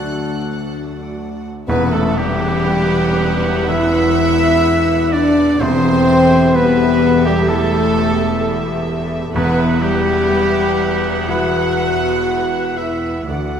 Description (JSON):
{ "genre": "cinematic, emotional film score for orchestra", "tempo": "62 BPM", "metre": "4/4", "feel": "uneven beats, rubato", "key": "E minor", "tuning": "A4 = 440 Hz", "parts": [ { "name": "warm symphonic violin section", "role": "melody", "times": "0.0-13.6 s", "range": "E5 to F#6", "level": "-29 LUFS", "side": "left 2 dB", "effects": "none" }, { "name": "warm symphonic violin section", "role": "second line", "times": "0.0-13.6 s", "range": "G4 to F#5", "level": "-26 LUFS", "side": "equal", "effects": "none" }, { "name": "clear baby grand piano", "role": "accompaniment", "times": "0.0-13.6 s", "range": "D2 to D5", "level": "-24 LUFS", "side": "equal", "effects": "none" }, { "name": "dark symphonic viola section", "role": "accompaniment", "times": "0.0-13.6 s", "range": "D4 to F#5", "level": "-26 LUFS", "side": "right 4 dB", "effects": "none" }, { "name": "dark French horn section", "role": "sustained chords", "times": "0.0-13.6 s", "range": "F#3 to A4", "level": "-16 LUFS", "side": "left 2 dB", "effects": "none" }, { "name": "concert harp", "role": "arpeggios", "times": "0.0-13.6 s", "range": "D3 to F#5", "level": "-26 LUFS", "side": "left 8 dB", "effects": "none" }, { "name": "rich symphonic double bass section", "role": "bass", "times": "0.0-13.6 s", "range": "E1 to D2", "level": "-25 LUFS", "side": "right 4 dB", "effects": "none" }, { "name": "warm symphonic cello section", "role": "bass", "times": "0.0-13.6 s", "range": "D2 to E2", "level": "-25 LUFS", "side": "right 5 dB", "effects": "none" }, { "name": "clear oboe", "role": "second line", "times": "1.7-13.6 s", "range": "G4 to F#5", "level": "-23 LUFS", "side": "right 3 dB", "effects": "none" }, { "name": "tam-tam", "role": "percussion", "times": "1.7-5.6 s", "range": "none", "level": "-30 LUFS", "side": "equal", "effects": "none" }, { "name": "timpani", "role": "percussion", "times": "1.7-10.7 s", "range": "E2", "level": "-28 LUFS", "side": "right 2 dB", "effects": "none" } ], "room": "moderate scoring stage reverb, RT60 1.9 s", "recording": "none", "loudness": "-13 LUFS", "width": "side -8 dB against mid", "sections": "0.0-1.7 A section; 1.7-13.6 B section", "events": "band accent 1.7-2.7", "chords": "0.0 D; 1.7 Emadd9; 5.6 C6/E; 9.3 Emadd9" }